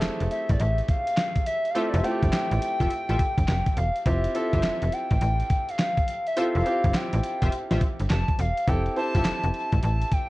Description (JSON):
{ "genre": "R&B, new jack swing", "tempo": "104 BPM", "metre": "4/4", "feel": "swing 64% on 16ths", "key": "F major", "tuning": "A4 = 437 Hz", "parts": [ { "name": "bright grand piano", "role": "accompaniment", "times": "0.0-10.3 s", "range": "A3 to C5", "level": "-31 LUFS", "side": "right 1 dB", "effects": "none" }, { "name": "funky polysynth comp", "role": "stabs", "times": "0.0-9.3 s", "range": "F4 to E5", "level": "-32 LUFS", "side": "left 1 dB", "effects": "chorus" }, { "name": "slap-like FM bass", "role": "bass", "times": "0.0-10.0 s", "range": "E1 to A1", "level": "-25 LUFS", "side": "equal", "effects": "none" }, { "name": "dusty soul sampler-style drum kit", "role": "drums", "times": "0.0-10.3 s", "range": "handclaps, hi-hat, kick drum, snare drum", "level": "-26 LUFS", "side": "equal", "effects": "none" }, { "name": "hollow clarinet-like synth lead", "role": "melody", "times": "0.3-10.3 s", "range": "D5 to A5", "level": "-28 LUFS", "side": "left 1 dB", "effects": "chorus" } ], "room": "light reverb", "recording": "cassette tape", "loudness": "-22 LUFS", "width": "side -19 dB against mid", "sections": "0.0-10.3 A section", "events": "none", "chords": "0.0 Fmaj9" }